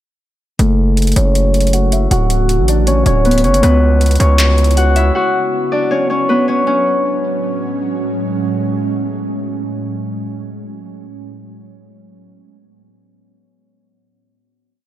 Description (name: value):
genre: hip hop, trap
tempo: 158 BPM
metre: 4/4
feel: half-time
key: F# minor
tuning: A4 = 441 Hz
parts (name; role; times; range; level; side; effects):
- Celtic harp; melody; 0.6-9.6 s; A3 to F#5; -16 LUFS; left 1 dB; low-pass filter, tape echo
- ethereal airy pad; sustained chords; 1.4-10.4 s; A2 to F#4; -22 LUFS; right 2 dB; ensemble chorus, built-in reverb, low-pass filter
- distorted 808-style bass; bass; 0.6-5.1 s; D1 to C#2; -12 LUFS; equal; distortion
- booming analog drum machine; drums; 0.6-5.1 s; handclaps, hi-hat; -21 LUFS; equal; overdrive
room: digital ambience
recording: none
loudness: -12 LUFS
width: side -13 dB against mid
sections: 0.6-6.7 breakdown; 6.7-9.7 final chord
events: filter sweep 0.6-6.7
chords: 0.6 F#m; 2.1 Dmaj7; 3.6 C#m7; 5.2 Bmadd9; 6.7 F#madd9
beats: | 0.59 0.97 1.35 1.73 | 2.11 2.49 2.87 3.25 | 3.63 4.01 4.39 4.77 | 5.15 5.53 5.91 6.29 | 6.67 7.05 7.43 7.81 | 8.19 8.57 8.95 9.33